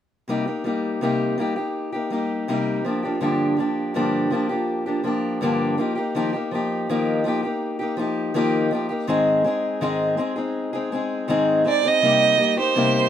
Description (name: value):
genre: acoustic pop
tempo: 82 BPM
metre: 4/4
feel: straight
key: C minor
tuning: A4 = 441 Hz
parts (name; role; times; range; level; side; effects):
- fingerpicked acoustic archtop guitar; accompaniment; 0.3-13.1 s; G2 to Ab4; -21 LUFS; left 1 dB; none
- warm violin; melody; 11.7-13.1 s; C5 to Eb5; -17 LUFS; right 6 dB; none
room: light reverb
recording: minimal, uncompressed stereo recording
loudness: -20 LUFS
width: side -9 dB against mid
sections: 0.3-12.0 A section; 12.0-13.1 B section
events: none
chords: 0.3 Cm7; 2.9 Gm7; 5.8 Ebadd9; 9.1 Ab; 12.0 Cm7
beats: | 0.28 1.02 1.75 2.48 | 3.22 3.95 4.69 5.42 | 6.15 6.89 7.62 8.35 | 9.09 9.82 10.55 11.29 | 12.02 12.76